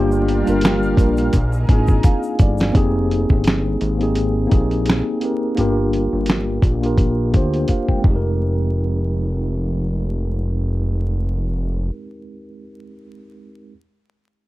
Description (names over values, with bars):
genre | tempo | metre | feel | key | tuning
lo-fi hip hop | 85 BPM | 4/4 | swing 55% on 16ths | F dorian | A4 = 445 Hz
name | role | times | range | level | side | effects
mellow tine electric piano | accompaniment | 0.0-13.7 s | G3 to Ab5 | -22 LUFS | equal | medium stereo tremolo, cassette tape, low-pass filter, plate reverb
lush unison pad | sustained chords | 0.0-2.7 s | D4 to F5 | -28 LUFS | equal | chorus, low-pass filter, plate reverb
fat analog bass | bass | 0.0-11.9 s | F1 to D2 | -20 LUFS | equal | none
egg shaker | percussion | 0.1-2.7 s | none | -48 LUFS | left 3 dB | none
dusty soul sampler-style drum kit | drums | 0.3-8.2 s | finger snaps, hi-hat, kick drum, snare drum | -16 LUFS | equal | overdrive
room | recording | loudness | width
light reverb | dark, warm production, vinyl crackle | -16 LUFS | side -17 dB against mid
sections
0.0-2.7 A section; 2.7-8.4 B section; 8.4-11.2 C section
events
drum fill 1.3-2.7, 7.7-8.4; tine electric piano fill 1.3-2.7, 7.3-8.4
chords
0.0 Gm7; 1.3 Bb7sus4; 2.7 Fm11; 5.6 Gm7; 8.0 Fm11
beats
0.63 1.33 2.04 | 2.75 3.45 4.16 4.86 | 5.57 6.28 6.98 7.69 | 8.39 9.10 9.80 10.51